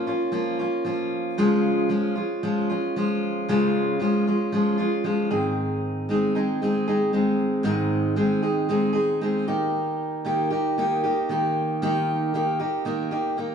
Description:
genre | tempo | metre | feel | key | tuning
pop | 115 BPM | 4/4 | swing 60% on 16ths | Ab major | A4 = 440 Hz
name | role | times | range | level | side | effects
picked steel-string acoustic guitar | solo | 0.0-13.5 s | Ab2 to Ab4 | -21 LUFS | equal | none
room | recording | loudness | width
wet large studio reverb, RT60 1.3 s | band playing live in one room, nothing above 10.8 kHz | -21 LUFS | side -7 dB against mid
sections
0.0-13.5 A section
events
none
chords
0.0 Bbm; 1.4 Db; 5.3 Ab; 9.5 Eb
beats
0.34 0.86 | 1.39 1.91 2.43 2.95 | 3.47 4.00 4.52 5.04 | 5.56 6.08 6.60 7.13 | 7.65 8.17 8.69 9.21 | 9.73 10.26 10.78 11.30 | 11.82 12.34 12.86 13.38

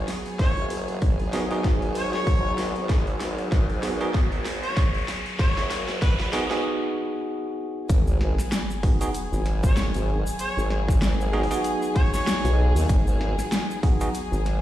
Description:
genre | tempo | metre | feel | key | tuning
glitch hop | 96 BPM | 4/4 | swing 57% on 16ths | G# minor | A4 = 440 Hz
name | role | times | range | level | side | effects
warm chamber string section | sustained chords | 0.0-14.6 s | F#3 to G#4 | -33 LUFS | left 1 dB | sidechain pumping
formant-sweep wobble bass | bass | 0.0-14.6 s | F#1 to D#2 | -26 LUFS | equal | chorus, tube saturation, high-pass filter
riser and sub drop | sound effects | 0.1-10.4 s | none | -33 LUFS | equal | none
dubstep drum kit | drums | 0.1-14.6 s | hi-hat, snare drum | -32 LUFS | equal | high-pass filter on hats, studio ambience, high-pass filter on snare
warm harmonica | melody | 0.4-12.6 s | B4 to C#5 | -32 LUFS | equal | ping-pong delay
electronic kick drum | drums | 0.4-14.0 s | none | -21 LUFS | equal | studio ambience
bell-like tine electric piano | stabs | 1.3-14.1 s | B3 to G#4 | -29 LUFS | moving between left 4 dB and right 4 dB | auto-pan, sidechain pumping, low-pass filter, ping-pong delay
tube shaker | percussion | 7.9-14.4 s | none | -41 LUFS | left 1 dB | none
room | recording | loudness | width
light reverb, studio reverb | played on a big sound system in a bare room, stone room reverb, lossy compression artefacts | -22 LUFS | side -13 dB against mid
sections
0.0-7.9 A section; 7.9-14.6 B section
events
build-up 0.0-7.9; drum fill 0.0-6.6; riser 0.1-6.6; break 6.6-7.9; drop 7.9-14.6; impact 7.9-10.4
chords
0.0 G#m7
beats
| 0.39 1.02 1.64 2.27 | 2.89 3.52 4.14 4.77 | 5.39 6.02 6.64 7.27 | 7.89 8.52 9.14 9.77 | 10.39 11.02 11.64 12.27 | 12.89 13.52 14.14

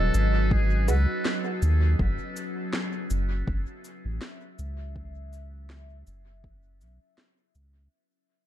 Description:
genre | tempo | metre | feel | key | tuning
ambient dub | 81 BPM | 4/4 | swing 56% on 16ths | F# dorian | A4 = 439 Hz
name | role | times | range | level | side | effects
trumpet with metal mute | melody | 0.0-2.0 s | G#4 to B4 | -35 LUFS | equal | dub echo
deep dark ambient pad | sustained chords | 0.0-7.9 s | F#3 to E5 | -33 LUFS | equal | chorus, built-in reverb
filtered dub chord stab | stabs | 0.0-1.0 s | F#3 to F#4 | -38 LUFS | right 2 dB | phaser, dub echo
soft dub sub bass | bass | 0.0-7.9 s | D#1 to D#2 | -25 LUFS | equal | none
electronic cabasa and snare drum | drums | 0.1-7.7 s | none | -35 LUFS | equal | dub echo
electronic kick drum | drums | 0.5-6.6 s | none | -28 LUFS | equal | none
room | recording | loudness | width
digital ambience | dark, warm production | -24 LUFS | side -12 dB against mid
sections
0.0-7.9 A section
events
fade-out 0.0-7.9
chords
0.0 G#m7; 2.0 F#7(no3)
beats
0.51 1.25 | 1.99 2.73 3.48 4.22 | 4.96 5.70 6.44 7.18

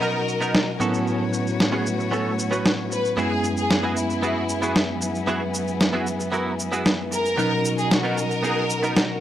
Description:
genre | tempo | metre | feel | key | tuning
nu-disco, nu disco | 114 BPM | 4/4 | straight | F# mixolydian | A4 = 440 Hz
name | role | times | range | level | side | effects
rich studio violin section | melody | 0.0-9.2 s | E4 to B4 | -26 LUFS | equal | tape echo
bell-like tine electric piano | accompaniment | 0.0-9.2 s | F#2 to A#4 | -27 LUFS | equal | fast stereo tremolo
warm chamber string section | sustained chords | 0.0-9.2 s | F#3 to A#5 | -29 LUFS | left 2 dB | none
direct-recorded clean electric guitar | riff | 0.0-9.0 s | B3 to B4 | -27 LUFS | right 2 dB | ensemble chorus
electronic shaker and snare drum | drums | 0.0-9.1 s | none | -24 LUFS | equal | low-pass filter on perc, small room ambience, low-pass filter on snare
room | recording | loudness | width
light reverb, digital ambience | dry, gritty hardware recording | -20 LUFS | side -11 dB against mid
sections
0.0-9.2 A section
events
none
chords
0.0 Bmaj7; 0.8 A69; 3.2 F#9sus4; 7.4 Bmaj7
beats
0.02 0.55 | 1.07 1.60 2.12 2.65 | 3.18 3.70 4.23 4.76 | 5.28 5.81 6.33 6.86 | 7.39 7.91 8.44 8.97

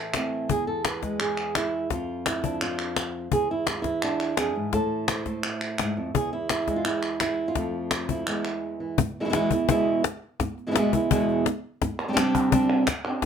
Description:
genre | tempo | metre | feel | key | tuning
flamenco | 170 BPM | 4/4 | straight | E phrygian dominant | A4 = 440 Hz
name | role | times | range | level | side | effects
flamenco guitar | melody | 0.0-13.3 s | E2 to C5 | -25 LUFS | right 2 dB | none
cajon | percussion | 0.1-13.3 s | none | -27 LUFS | left 8 dB | none
palmas hand claps | percussion | 0.1-8.6, 12.0-13.2 s | none | -30 LUFS | right 1 dB | none
room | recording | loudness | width
moderate studio reverb, RT60 0.6 s | none | -23 LUFS | side -7 dB against mid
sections
0.0-9.0 A section; 9.0-13.3 B section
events
break 8.6-9.0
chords
0.5 E; 1.9 N.C.; 3.3 E; 4.7 Am; 6.1 E; 7.6 F; 8.3 E; 11.8 Csus2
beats
0.14 | 0.50 0.85 1.20 1.56 | 1.91 2.26 2.61 2.97 | 3.32 3.67 4.03 4.38 | 4.73 5.08 5.44 5.79 | 6.14 6.50 6.85 7.21 | 7.56 7.92 8.27 8.63 | 8.98 9.34 9.69 10.05 | 10.40 10.75 11.11 11.46 | 11.81 12.17 12.52 12.87 | 13.23

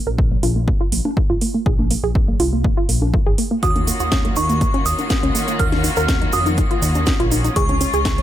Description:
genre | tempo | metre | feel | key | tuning
progressive house | 122 BPM | 4/4 | straight | Bb minor | A4 = 438 Hz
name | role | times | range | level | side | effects
analog pluck | arpeggios | 0.1-8.2 s | Bb3 to Bb4 | -23 LUFS | right 1 dB | chorus, sidechain pumping, ping-pong delay
dark detuned saw bass | bass | 0.1-8.2 s | Ab1 to F2 | -22 LUFS | equal | sidechain pumping
electronic kick drum | drums | 0.2-8.2 s | none | -20 LUFS | equal | none
congas | percussion | 0.3-8.2 s | none | -29 LUFS | left 2 dB | sidechain pumping on perc
house drum kit | drums | 0.4-8.2 s | hi-hat, snare drum | -25 LUFS | right 1 dB | sidechain pumping on hats
glassy synth bell | melody | 3.6-8.2 s | Db6 to F6 | -23 LUFS | right 1 dB | chorus, ping-pong delay
rich symphonic string section | sustained chords | 3.6-8.2 s | Eb3 to Gb4 | -26 LUFS | left 2 dB | sidechain pumping
egg shaker | percussion | 3.6-8.2 s | none | -30 LUFS | right 6 dB | none
room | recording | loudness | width
little or no reverb | none | -16 LUFS | side -12 dB against mid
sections
0.0-8.2 A section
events
filter sweep on synth arpeggio sound 0.0-8.2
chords
0.0 Bbsus2; 3.6 Ebm7; 7.6 Db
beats
0.18 0.68 1.17 | 1.66 2.15 2.64 3.14 | 3.63 4.12 4.61 5.10 | 5.59 6.09 6.58 7.07 | 7.56 8.05

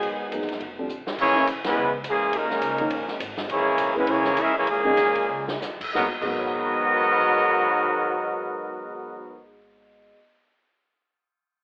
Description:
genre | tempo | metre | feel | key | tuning
jazz, big band swing | 177-208 BPM | 4/4 | swing 59% on 8ths | G# minor | A4 = 436 Hz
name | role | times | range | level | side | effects
clear saxophone section | melody | 0.0-0.9 s | F#3 to G#4 | -33 LUFS | equal | none
bright trombone section | second line | 0.0-9.4 s | G#2 to E4 | -31 LUFS | equal | none
upright bass | bass | 0.0-10.1 s | Eb1 to E2 | -46 LUFS | equal | none
swinging big-band drum kit | drums | 0.0-6.3 s | crash cymbal, hi-hat, kick drum, ride cymbal, snare drum | -35 LUFS | equal | none
dark baby grand piano | accompaniment | 0.3-10.4 s | G#2 to A#6 | -34 LUFS | equal | none
warm trumpet section | melody | 1.2-9.4 s | G#3 to E5 | -25 LUFS | equal | none
room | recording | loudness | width
moderate large studio reverb, RT60 0.9 s | telephone sound | -24 LUFS | mono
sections
0.0-1.2 A section; 1.2-5.9 B section; 5.9-8.7 C section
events
drum fill 0.9, 5.3-5.6; band accent 1.6; slowing down 3.5-5.9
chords
0.0 G#m9; 0.6 F7; 1.2 A#m7b5; 2.3 D#7sus4; 3.5 A#m7b5; 4.7 D#7sus4; 5.9 G#m9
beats
| 0.04 0.33 0.62 0.91 | 1.20 1.48 1.77 2.06 | 2.35 2.64 2.92 3.21 | 3.50 3.79 4.08 4.37 | 4.67 4.98 5.29 5.62 | 5.95 6.29 6.63 6.96 | 7.30 7.64 7.98 8.32

